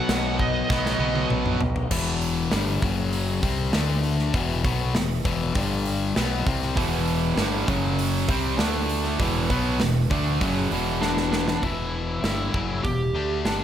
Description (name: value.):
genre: hard rock.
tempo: 99 BPM.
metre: 4/4.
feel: straight.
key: E minor.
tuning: A4 = 440 Hz.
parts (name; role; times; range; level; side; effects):
smooth overdriven lead guitar; melody; 0.0-1.3, 11.0-13.6 s; D4 to F#5; -28 LUFS; equal; digital delay.
cranked stack guitar; riff; 0.0-13.6 s; E2 to D4; -26 LUFS; left 6 dB; overdrive.
distorted electric guitar; riff; 0.0-1.6, 6.8-11.6 s; E2 to D4; -27 LUFS; right 10 dB; overdrive.
growling fingered electric bass; bass; 0.1-13.6 s; E1 to D2; -28 LUFS; equal; overdrive.
big rock drum kit; drums; 0.1-13.6 s; crash cymbal, hi-hat, kick drum, snare drum, toms; -27 LUFS; right 1 dB; none.
room: light reverb.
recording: none.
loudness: -21 LUFS.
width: side -10 dB against mid.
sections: 0.0-1.9 A section; 1.9-11.6 B section; 11.6-13.6 C section.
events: drum fill 0.7-1.9, 11.0-11.6.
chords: 0.0 B; 1.9 Em; 2.8 F#5; 3.4 C5; 3.7 D5; 4.3 E5; 5.6 G5; 6.2 Em; 7.7 F#5; 8.3 C5; 8.6 D5; 9.2 E5; 11.6 Em.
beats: 0.09 0.69 1.30 | 1.91 2.52 3.12 3.73 | 4.34 4.95 5.55 6.16 | 6.77 7.38 7.98 8.59 | 9.20 9.80 10.41 11.02 | 11.63 12.23 12.84 13.45.